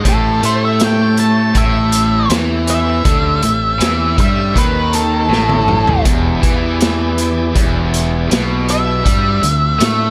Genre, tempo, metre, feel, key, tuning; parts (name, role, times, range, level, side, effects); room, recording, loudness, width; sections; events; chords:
blues rock power trio and southern rock; 80 BPM; 4/4; straight; A4 = 440 Hz
bright tonewheel organ; sustained chords; 0.0-10.1 s; B#3 to D5; -29 LUFS; equal; overdrive, fast rotary speaker
raw garage guitar; riff; 0.0-10.1 s; E2 to A3; -20 LUFS; equal; overdrive
growling fingered electric bass; bass; 0.0-10.1 s; E1 to A2; -20 LUFS; equal; overdrive
octave-fuzz lead guitar; melody; 0.1-10.1 s; A4 to A5; -20 LUFS; equal; distortion, analog delay
vintage drum kit; drums; 0.1-10.0 s; hi-hat, kick drum, snare drum, toms; -19 LUFS; equal
light reverb; -14 LUFS; mono
0.0-10.1 A section
drum fill 5.3-6.1
0.0 A7#9; 6.1 E7#9; 9.1 D7#9